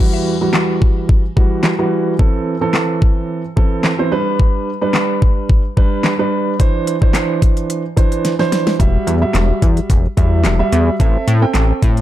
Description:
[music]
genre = dance-pop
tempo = 109 BPM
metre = 4/4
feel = straight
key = E minor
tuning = A4 = 445 Hz
[part]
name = dark grand piano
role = accompaniment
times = 0.0-12.0 s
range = E3 to G5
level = -18 LUFS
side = right 2 dB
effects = sidechain pumping
[part]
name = pop drum kit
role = drums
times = 0.5-12.0 s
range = handclaps, hi-hat, kick drum, snare drum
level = -15 LUFS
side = equal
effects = none
[part]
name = chorused synth bass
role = bass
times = 8.8-12.0 s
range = E1 to A2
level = -14 LUFS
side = left 1 dB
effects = sidechain pumping
[sound]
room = light reverb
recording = dark, warm production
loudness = -13 LUFS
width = side -13 dB against mid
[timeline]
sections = 0.0-12.0 A section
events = drum fill 8.2-8.8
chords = 0.0 Emadd9; 2.2 Am; 4.1 G; 6.6 Cadd9; 8.8 Emadd9; 11.0 Am

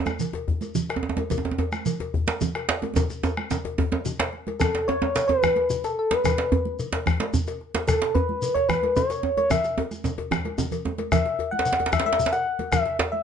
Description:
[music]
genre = west african traditional, West African drum ensemble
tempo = 147 BPM (dotted quarters)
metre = 12/8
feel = straight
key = unclear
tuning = A4 = 440 Hz
[part]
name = bombo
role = percussion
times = 0.1-12.8 s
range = none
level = -28 LUFS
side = left 3 dB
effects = none
[part]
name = congas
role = percussion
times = 0.1-13.2 s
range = none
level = -31 LUFS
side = right 9 dB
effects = none
[part]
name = djembe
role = percussion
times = 0.1-13.1 s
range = none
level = -26 LUFS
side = right 4 dB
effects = none
[part]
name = shekere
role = percussion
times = 0.1-12.8 s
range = none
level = -33 LUFS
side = left 3 dB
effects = none
[part]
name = cowbell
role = percussion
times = 0.2-13.1 s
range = none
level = -34 LUFS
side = left 7 dB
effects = none
[part]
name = djembe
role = percussion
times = 0.3-13.1 s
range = none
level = -33 LUFS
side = left 5 dB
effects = none
[part]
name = soft struck synth lead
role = melody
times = 4.6-13.2 s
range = A4 to F#5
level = -23 LUFS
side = left 1 dB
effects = chorus
[sound]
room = light reverb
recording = nothing above 11.0 kHz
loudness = -22 LUFS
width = side -7 dB against mid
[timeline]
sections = 0.0-4.6 A section; 4.6-13.2 B section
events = speeding up 0.0-13.2; drum fill 3.0-4.6, 10.6-11.1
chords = none

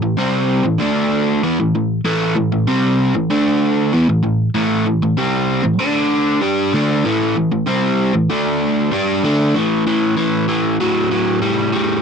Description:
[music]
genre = rock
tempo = 96 BPM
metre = 4/4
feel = straight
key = A minor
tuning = A4 = 439 Hz
[part]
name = crunchy overdriven guitar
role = solo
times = 0.0-12.0 s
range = A2 to G4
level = -14 LUFS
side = equal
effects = none
[sound]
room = light reverb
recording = dry, close 1970s-style studio recording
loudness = -14 LUFS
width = side -6 dB against mid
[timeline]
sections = 0.0-9.5 A section; 9.5-12.0 B section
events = none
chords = 0.0 Am; 0.8 D5; 1.4 Am; 3.3 D5; 3.9 Am; 5.8 D5; 6.4 Am; 8.3 D5; 8.9 Dsus4; 9.5 A5

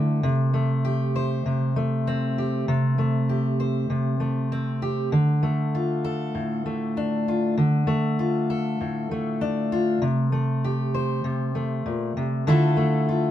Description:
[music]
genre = folk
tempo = 98 BPM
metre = 4/4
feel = straight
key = D minor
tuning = A4 = 442 Hz
[part]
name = fingerpicked steel-string acoustic guitar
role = solo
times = 0.0-13.3 s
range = A2 to C5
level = -22 LUFS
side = equal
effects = none
[sound]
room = moderate studio reverb, RT60 0.6 s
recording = band playing live in one room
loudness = -22 LUFS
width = side -11 dB against mid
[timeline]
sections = 0.0-13.3 A section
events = none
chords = 0.2 Am7/C; 5.1 Dm; 10.0 Am7/C; 12.5 Dmadd9

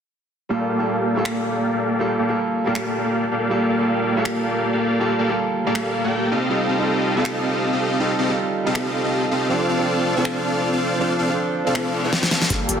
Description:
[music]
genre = future bass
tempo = 160 BPM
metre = 4/4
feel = swing 55% on 16ths, half-time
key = G minor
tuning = A4 = 436 Hz
[part]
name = clear concert grand piano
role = accompaniment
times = 0.5-12.8 s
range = F3 to A4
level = -24 LUFS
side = right 3 dB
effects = sidechain pumping, dub echo
[part]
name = dense compressed supersaw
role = riff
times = 0.5-12.8 s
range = Bb3 to G5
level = -21 LUFS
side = left 1 dB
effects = sidechain pumping, low-pass filter, dub echo
[part]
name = pop drum kit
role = drums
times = 1.3-12.8 s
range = finger snaps, hi-hat, snare drum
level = -26 LUFS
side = left 1 dB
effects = soft clipping on snare, high-pass filter on snare, high-pass filter on hats
[part]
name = reverse cymbal and riser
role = sound effects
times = 11.9-12.8 s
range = none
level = -30 LUFS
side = left 6 dB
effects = none
[part]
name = ethereal airy pad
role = sustained chords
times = 12.7-12.8 s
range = F3 to A4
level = -30 LUFS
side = left 3 dB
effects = none
[part]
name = warm 808-style bass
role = bass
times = 12.5-12.8 s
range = G1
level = -29 LUFS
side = left 1 dB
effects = sidechain pumping
[part]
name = electronic kick drum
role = drums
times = 12.5-12.6 s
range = none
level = -26 LUFS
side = left 1 dB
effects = none
[sound]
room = moderate lush hall reverb, RT60 1.9 s, digital ambience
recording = dense, heavily limited modern master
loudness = -19 LUFS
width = side -8 dB against mid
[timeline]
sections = 0.5-12.5 A section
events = filter sweep on supersaw synth 0.5-12.5; reverse cymbal 11.9-12.5; drum fill 12.1-12.5, 12.5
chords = 0.5 Gm9; 6.3 F9; 9.5 Dm7

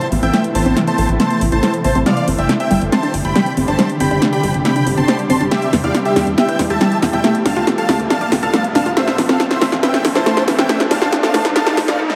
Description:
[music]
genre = uplifting trance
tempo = 139 BPM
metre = 4/4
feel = straight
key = A minor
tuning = A4 = 443 Hz
[part]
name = big supersaw lead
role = melody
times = 0.0-12.0 s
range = G4 to C6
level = -22 LUFS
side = equal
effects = subtle chorus, diffuse ambient delay
[part]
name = shimmering ambient pad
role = sustained chords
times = 0.0-12.0 s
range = A2 to G4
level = -23 LUFS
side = equal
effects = chorus, built-in reverb, phaser
[part]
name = punchy analog drum machine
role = drums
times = 0.0-12.2 s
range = hi-hat, snare drum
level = -20 LUFS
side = equal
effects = overdrive
[part]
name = riser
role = sound effects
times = 2.7-12.2 s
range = none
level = -30 LUFS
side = equal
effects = none
[part]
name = unison pluck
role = arpeggios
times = 0.1-12.1 s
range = G3 to A5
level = -22 LUFS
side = equal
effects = diffuse ambient delay
[part]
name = tight sequencer bass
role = bass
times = 0.1-12.0 s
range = G1 to E2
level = -25 LUFS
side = equal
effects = none
[sound]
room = wet huge ambient reverb, RT60 9.2 s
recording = dreamy mix soaked in reverb, high-pass filter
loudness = -16 LUFS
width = mono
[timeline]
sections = 0.0-12.2 A section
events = build-up 0.0-12.2; drum fill 0.0-12.0; filter sweep on synth arpeggio sound 0.0-12.2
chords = 0.0 Amadd9; 2.1 Gsus4; 5.5 Em; 7.2 Dm; 9.0 Amadd9; 10.7 Dm

